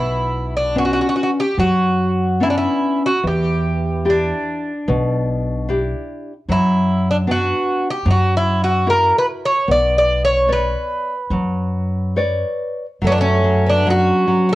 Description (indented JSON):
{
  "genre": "fado-style ballad",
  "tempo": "74 BPM",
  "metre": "4/4",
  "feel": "uneven beats, rubato",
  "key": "B harmonic minor",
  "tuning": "A4 = 441 Hz",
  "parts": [
    { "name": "Irish bouzouki", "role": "melody", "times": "0.0-14.6 s", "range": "C#4 to D5", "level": "-18 LUFS", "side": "equal", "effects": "none" },
    { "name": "nylon-string guitar", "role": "accompaniment", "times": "0.0-14.6 s", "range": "B2 to D5", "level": "-20 LUFS", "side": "left 1 dB", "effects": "none" },
    { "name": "upright bass", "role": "bass", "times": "0.0-14.1 s", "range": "B1 to F#2", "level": "-21 LUFS", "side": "equal", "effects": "transformer saturation" },
    { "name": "picked twelve-string acoustic guitar", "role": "second line", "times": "13.0-14.6 s", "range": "A3 to F#4", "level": "-22 LUFS", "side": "right 3 dB", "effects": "none" }
  ],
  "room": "wet small room reverb, RT60 0.6 s",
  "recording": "worn, warbling old tape, cassette tape, warbly pitch drift",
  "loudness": "-15 LUFS",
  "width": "side -16 dB against mid",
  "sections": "0.0-13.0 A section; 13.0-14.6 B section",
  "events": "none",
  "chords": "0.0 Bmadd9; 3.2 Em7; 6.5 Bm/F#; 8.1 F#7; 9.7 Bmadd9; 13.0 F#5",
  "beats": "0.76 1.59 2.42 | 3.24 4.07 4.88 5.69 | 6.49 7.27 8.06 8.87 | 9.68 10.49 11.31 12.16 | 13.02 13.86"
}